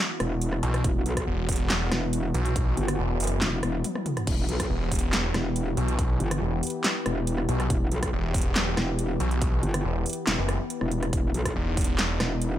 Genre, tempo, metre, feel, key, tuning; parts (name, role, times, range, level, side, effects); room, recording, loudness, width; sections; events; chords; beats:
heavy wobble dubstep; 140 BPM; 4/4; half-time; E harmonic minor; A4 = 437 Hz
lush unison pad; sustained chords; 0.0-12.6 s; E3 to G4; -33 LUFS; left 1 dB; chorus, sidechain pumping
metallic wobble bass; bass; 0.2-12.6 s; E1 to B1; -27 LUFS; equal; chorus, overdrive
big-room dance drum kit; drums; 0.2-12.5 s; crash cymbal, handclaps, hi-hat, rim click, snare drum, toms; -29 LUFS; equal; studio reverb
snarling distorted saw bass; bass; 0.6-12.2 s; E1 to B1; -27 LUFS; equal; distortion, overdrive
electronic kick drum; drums; 0.8-11.9 s; -28 LUFS; equal; studio reverb
digital ambience; -24 LUFS; side -12 dB against mid
0.0-12.6 A section
break 3.8-4.3; drum fill 3.8-4.3
0.0 Em
0.41 | 0.84 1.27 1.70 2.13 | 2.56 2.99 3.42 3.84 | 4.27 4.70 5.13 5.56 | 5.99 6.42 6.84 7.27 | 7.70 8.13 8.56 8.99 | 9.41 9.84 10.27 10.70 | 11.13 11.56 11.99 12.41